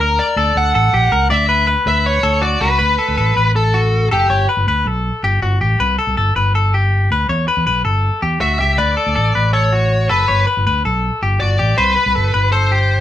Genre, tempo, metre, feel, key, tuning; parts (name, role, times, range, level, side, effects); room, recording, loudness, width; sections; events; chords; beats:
jangly indie pop; 160 BPM; 4/4; straight; D major; A4 = 439 Hz
smooth overdriven lead guitar; melody; 0.0-4.5, 8.4-13.0 s; G4 to F#5; -17 LUFS; equal
clean electric guitar; arpeggios; 0.0-13.0 s; F#4 to D5; -18 LUFS; left 3 dB
fingered electric bass; bass; 0.0-13.0 s; F#1 to E2; -17 LUFS; equal
moderate small room reverb, RT60 0.5 s; band playing live in one room; -13 LUFS; side -12 dB against mid
0.0-2.8 A section; 2.8-13.0 B section
0.0 Gm/D; 1.3 Dadd9; 2.8 D; 4.3 G; 5.8 C5; 7.3 Em; 8.8 D; 10.3 G; 11.8 C5
0.18 0.56 0.93 | 1.30 1.68 2.05 2.42 | 2.80 3.17 3.55 3.92 | 4.30 4.67 5.04 5.42 | 5.79 6.17 6.54 6.92 | 7.29 7.67 8.04 8.42 | 8.79 9.17 9.54 9.91 | 10.29 10.66 11.04 11.41 | 11.79 12.16 12.53 12.91